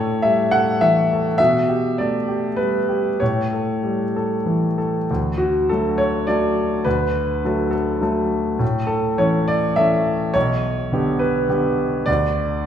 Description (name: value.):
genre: neoclassical minimalist piano.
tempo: 103 BPM.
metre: 3/4.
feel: rubato.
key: D major.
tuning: A4 = 443 Hz.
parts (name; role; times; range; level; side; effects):
warm grand piano; solo; 0.0-12.7 s; B1 to F#5; -17 LUFS; equal; none.
room: wet recital hall reverb, RT60 1.6 s.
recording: recorded in a church or concert hall.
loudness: -17 LUFS.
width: side -9 dB against mid.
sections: 0.0-5.1 A section; 5.1-12.7 B section.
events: none.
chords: 0.0 A7; 1.4 Gadd9/B; 3.2 A7; 5.1 D; 8.6 A; 10.4 G/B; 12.1 N.C..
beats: 0.23 0.81 | 1.39 1.98 2.58 | 3.20 3.84 4.47 | 5.09 5.69 6.27 | 6.85 7.44 8.03 | 8.61 9.20 9.78 | 10.35 10.92 11.50 | 12.07 12.66.